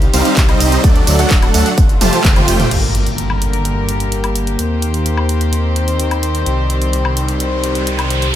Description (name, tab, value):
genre	EDM, festival progressive house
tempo	128 BPM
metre	4/4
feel	straight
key	unclear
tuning	A4 = 440 Hz
part	rich studio string section	sustained chords	0.0-8.3 s	A2 to C5	-20 LUFS	left 2 dB	sidechain pumping
part	detuned saw bass	bass	0.0-8.3 s	D1 to Eb2	-18 LUFS	equal	sidechain pumping
part	big-room dance drum kit	drums	0.0-8.3 s	crash cymbal, handclaps, hi-hat, ride cymbal, tambourine, toms, woodblock	-20 LUFS	equal	none
part	supersaw chords	riff	0.1-2.7 s	F#3 to A5	-16 LUFS	right 2 dB	sidechain pumping, low-pass filter, dub echo
part	electronic kick drum	drums	0.4-2.3 s	none	-12 LUFS	equal	none
part	impact and riser	sound effects	2.7-8.4 s	none	-22 LUFS	equal	none
room	light reverb, digital ambience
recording	none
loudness	-12 LUFS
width	side -11 dB against mid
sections	0.0-2.7 A section; 2.7-8.4 B section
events	drop 0.0-2.7; drum fill 2.0-2.7; band accent 2.2; impact 2.7-4.6; riser 7.0-8.4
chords	0.0 Cm; 0.8 D; 1.8 Fadd9; 2.7 Gm; 4.6 Eb6; 6.5 Cm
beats	0.37 | 0.84 1.31 1.78 2.25 | 2.71 3.18 3.65 4.12 | 4.59 5.06 5.53 6.00 | 6.46 6.93 7.40 7.87 | 8.34